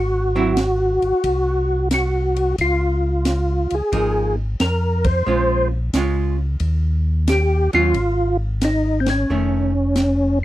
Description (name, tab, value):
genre	soul jazz organ trio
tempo	90 BPM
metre	4/4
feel	swing 68% on 8ths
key	Ab mixolydian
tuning	A4 = 440 Hz
part	percussive tonewheel organ	melody	0.0-10.4 s	C4 to C5	-19 LUFS	equal	chorus vibrato, slow rotary speaker
part	mellow tonewheel organ	bass	0.0-10.4 s	F1 to F2	-20 LUFS	equal	chorus vibrato, slow rotary speaker
part	archtop guitar, miked and amplified	accompaniment	0.4-9.7 s	Eb3 to F4	-22 LUFS	right 4 dB	none
part	compact cocktail drum kit	drums	0.6-10.2 s	hi-hat, kick drum, ride cymbal, snare drum	-23 LUFS	equal	none
room	little or no reverb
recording	dry, close 1970s-style studio recording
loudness	-17 LUFS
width	side -15 dB against mid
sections	0.0-10.4 A section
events	band accent 4.9-5.3, 9.0-9.3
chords	0.0 Ab7; 2.6 Db69; 5.3 Bbm7; 6.6 Ebsus2; 8.0 Absus4; 9.3 F7b13